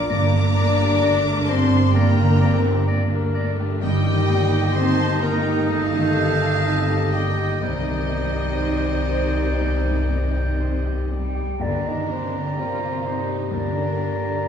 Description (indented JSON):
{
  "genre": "cinematic, emotional film score for orchestra",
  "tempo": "60-65 BPM",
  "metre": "4/4",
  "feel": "rubato",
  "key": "unclear",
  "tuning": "A4 = 438 Hz",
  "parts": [
    { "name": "warm studio violin section", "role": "melody", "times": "0.0-14.5 s", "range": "G4 to D6", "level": "-32 LUFS", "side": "left 2 dB", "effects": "none" },
    { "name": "rich studio violin section", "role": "second line", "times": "0.0-14.5 s", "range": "G4 to Bb5", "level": "-32 LUFS", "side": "left 1 dB", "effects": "none" },
    { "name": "warm clarinet", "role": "second line", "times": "0.0-14.5 s", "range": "Eb4 to D5", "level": "-30 LUFS", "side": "left 3 dB", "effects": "none" },
    { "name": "clear grand piano", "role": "accompaniment", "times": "0.0-14.5 s", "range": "G1 to Eb5", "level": "-29 LUFS", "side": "left 4 dB", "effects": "none" },
    { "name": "clear studio viola section", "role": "accompaniment", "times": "0.0-14.5 s", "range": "G3 to F4", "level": "-28 LUFS", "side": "right 3 dB", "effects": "none" },
    { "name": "mellow French horn section", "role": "sustained chords", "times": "0.0-14.5 s", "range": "Eb3 to G4", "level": "-27 LUFS", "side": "left 3 dB", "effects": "none" },
    { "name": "rich studio cello section", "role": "bass", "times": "0.0-14.5 s", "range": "G2 to G3", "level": "-25 LUFS", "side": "right 2 dB", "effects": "none" },
    { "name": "rich studio double bass section", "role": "bass", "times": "0.0-14.5 s", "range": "G1 to G2", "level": "-25 LUFS", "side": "equal", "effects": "none" },
    { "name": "clear oboe", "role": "second line", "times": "0.1-14.5 s", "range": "D5 to Bb5", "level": "-32 LUFS", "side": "equal", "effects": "none" },
    { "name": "mellow hollow concert flute", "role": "second line", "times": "0.1-14.5 s", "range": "C5 to Bb6", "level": "-32 LUFS", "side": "right 1 dB", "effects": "none" },
    { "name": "timpani", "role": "percussion", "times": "11.6-13.0 s", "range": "G2", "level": "-32 LUFS", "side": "left 1 dB", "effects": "none" }
  ],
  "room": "wet recital hall reverb, RT60 1.7 s",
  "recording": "recorded in a church or concert hall, small room ambience",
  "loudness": "-18 LUFS",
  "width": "side -8 dB against mid",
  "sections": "0.0-11.6 A section; 11.6-14.5 B section",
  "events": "none",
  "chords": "0.1 Gm; 3.8 Eb/G; 7.6 Cmadd9; 11.6 Gm",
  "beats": "| 0.10 1.02 1.95 2.89 | 3.82 4.75 5.70 6.65 | 7.63 8.62 9.62 10.61 | 11.61 12.57 13.52 14.47"
}